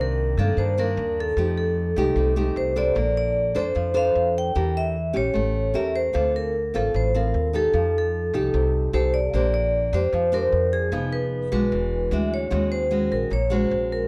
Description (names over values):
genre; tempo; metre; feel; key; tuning
bossa nova; 151 BPM; 4/4; straight; Bb major; A4 = 436 Hz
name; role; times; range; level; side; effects
vibraphone with medium mallets; melody; 0.0-14.1 s; Ab4 to G5; -27 LUFS; equal; none
nylon-string guitar; accompaniment; 0.0-14.1 s; G2 to C5; -28 LUFS; equal; none
upright bass; bass; 0.0-14.1 s; E1 to G2; -28 LUFS; equal; none
room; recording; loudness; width
light reverb; close, detailed microphones; -23 LUFS; mono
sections
0.0-14.1 A section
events
none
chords
0.0 Cm9; 1.4 F9; 3.0 Bbmaj9; 4.6 Em7b5; 5.4 A7b9; 6.1 Dm7; 7.7 F9; 9.3 Bb69; 10.9 Fm7b5; 11.7 E9; 12.5 Ebm7